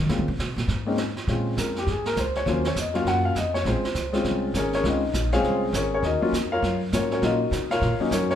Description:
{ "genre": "jazz piano trio", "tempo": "202 BPM", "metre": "4/4", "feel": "swing 63% on 8ths", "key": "Bb minor", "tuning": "A4 = 440 Hz", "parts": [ { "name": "upright bass", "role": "bass", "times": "0.0-8.4 s", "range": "Ab1 to Eb3", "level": "-27 LUFS", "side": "right 1 dB", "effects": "none" }, { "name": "warm baby grand piano", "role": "melody", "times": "0.1-8.4 s", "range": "Gb3 to Gb5", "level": "-24 LUFS", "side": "left 2 dB", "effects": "none" }, { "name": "vintage brush drum kit", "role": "drums", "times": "0.1-8.4 s", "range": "brushed snare drum, hi-hat, kick drum, snare drum", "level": "-31 LUFS", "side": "right 3 dB", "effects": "none" } ], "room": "light reverb", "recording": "none", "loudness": "-22 LUFS", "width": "side -10 dB against mid", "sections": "0.0-1.3 A section; 1.3-8.4 A section", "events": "upright bass solo 0.0-1.3; grand piano solo 1.3-8.4", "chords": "0.1 Bbm9; 2.5 Ebm9; 3.7 Bbm9; 6.0 Ebm9" }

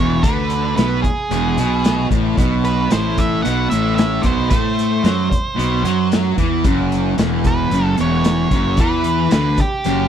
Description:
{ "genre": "blues rock power trio and southern rock", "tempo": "112 BPM", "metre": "4/4", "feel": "straight", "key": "unclear", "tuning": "A4 = 440 Hz", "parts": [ { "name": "octave-fuzz lead guitar", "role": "melody", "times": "0.0-10.1 s", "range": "G4 to F#5", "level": "-22 LUFS", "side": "right 4 dB", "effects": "distortion" }, { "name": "fuzz guitar", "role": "riff", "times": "0.0-10.1 s", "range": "E2 to A3", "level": "-18 LUFS", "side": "equal", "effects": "distortion" }, { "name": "fuzz fingered electric bass", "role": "bass", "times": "0.0-10.1 s", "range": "E1 to A2", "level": "-21 LUFS", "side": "equal", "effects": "overdrive" }, { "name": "vintage drum kit", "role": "drums", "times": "0.2-10.0 s", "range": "hi-hat, kick drum, snare drum", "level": "-20 LUFS", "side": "equal", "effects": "none" } ], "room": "studio reverb", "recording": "none", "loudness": "-14 LUFS", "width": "side -9 dB against mid", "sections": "0.0-10.1 A section", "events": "none", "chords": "0.0 E; 2.4 Am69; 6.7 N.C." }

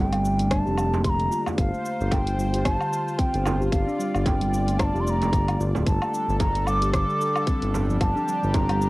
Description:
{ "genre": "organic downtempo", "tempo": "112 BPM", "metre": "4/4", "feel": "swing 57% on 16ths", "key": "G minor", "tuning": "A4 = 440 Hz", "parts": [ { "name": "hollow bansuri", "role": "melody", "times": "0.0-8.9 s", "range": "F5 to D6", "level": "-27 LUFS", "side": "equal", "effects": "analog delay" }, { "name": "warm analog pad", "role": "sustained chords", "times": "0.0-8.9 s", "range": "G3 to D5", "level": "-32 LUFS", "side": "equal", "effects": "chorus, tremolo, sidechain pumping, cassette tape" }, { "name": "steel tongue drum", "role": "arpeggios", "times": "0.0-8.9 s", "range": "D3 to G4", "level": "-29 LUFS", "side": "equal", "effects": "cassette tape, tape echo" }, { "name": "smooth synth bass", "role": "bass", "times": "0.0-8.9 s", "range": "D1 to G1", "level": "-25 LUFS", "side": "equal", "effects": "none" }, { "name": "deep house drum kit", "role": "drums", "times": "0.1-8.9 s", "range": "hi-hat, rim click, shaker, woodblock", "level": "-32 LUFS", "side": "equal", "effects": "overdrive, cassette tape" }, { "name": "electronic kick drum", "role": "drums", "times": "0.5-8.7 s", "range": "none", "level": "-24 LUFS", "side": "equal", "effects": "overdrive, cassette tape" }, { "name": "frame drum", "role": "percussion", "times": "0.9-8.7 s", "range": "none", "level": "-32 LUFS", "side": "right 4 dB", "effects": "none" } ], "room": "light reverb", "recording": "home recording on cassette", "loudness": "-21 LUFS", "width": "side -20 dB against mid", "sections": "0.0-8.9 A section", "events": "none", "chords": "0.0 Gmadd9; 1.6 Bbadd9/G (rootless); 5.9 Gmadd9" }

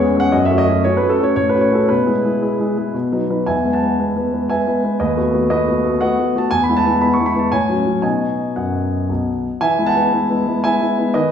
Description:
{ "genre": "classical-period piano sonatina", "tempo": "117 BPM", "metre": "3/4", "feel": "rubato", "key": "E major", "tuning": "A4 = 440 Hz", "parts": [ { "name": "warm concert grand piano", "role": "solo", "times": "0.0-11.3 s", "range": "B1 to C#6", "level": "-15 LUFS", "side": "equal", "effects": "none" } ], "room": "wet recital hall reverb, RT60 1.4 s", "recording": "heard from further back in the room, nothing above 10.9 kHz", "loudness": "-15 LUFS", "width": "side -8 dB against mid", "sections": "0.0-3.5 A section; 3.5-11.3 B section", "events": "none", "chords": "0.3 F#m; 1.4 F#m/A; 1.9 E/B; 2.9 B; 3.5 E; 5.0 B7/D#; 6.5 E; 7.5 F#m/A; 8.0 B; 9.6 E" }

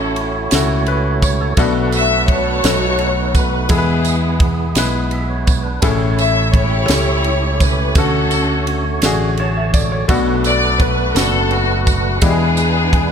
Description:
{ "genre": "slow gospel", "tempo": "56 BPM (dotted quarters)", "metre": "6/8", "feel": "straight", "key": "unclear", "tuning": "A4 = 441 Hz", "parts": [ { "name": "dark studio string section", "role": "melody", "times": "0.0-13.1 s", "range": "B3 to E5", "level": "-19 LUFS", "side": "left 3 dB", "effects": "none" }, { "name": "clear grand piano", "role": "accompaniment", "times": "0.0-13.1 s", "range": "A2 to E5", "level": "-21 LUFS", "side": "left 4 dB", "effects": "none" }, { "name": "tonewheel organ", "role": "sustained chords", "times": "0.0-13.1 s", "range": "D3 to A5", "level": "-22 LUFS", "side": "right 5 dB", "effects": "overdrive, fast rotary speaker" }, { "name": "fingered electric bass", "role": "bass", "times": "0.0-13.1 s", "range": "F#1 to E2", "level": "-19 LUFS", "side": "equal", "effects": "none" }, { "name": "crisp fusion drum kit", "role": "drums", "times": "0.2-13.1 s", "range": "kick drum, ride cymbal, snare drum", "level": "-18 LUFS", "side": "right 1 dB", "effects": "none" }, { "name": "tambourine", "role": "percussion", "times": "0.5-12.9 s", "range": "none", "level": "-27 LUFS", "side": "right 10 dB", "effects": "none" } ], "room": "light reverb", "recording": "none", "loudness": "-13 LUFS", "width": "side -7 dB against mid", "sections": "0.0-13.1 A section", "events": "tonewheel organ fill 9.0-10.1", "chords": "0.0 F#m7/A; 1.6 Bm7; 2.6 B7; 3.7 E; 5.8 Amaj7; 6.9 A7/C#; 8.0 Dmaj7; 10.1 Bm7; 12.2 E7" }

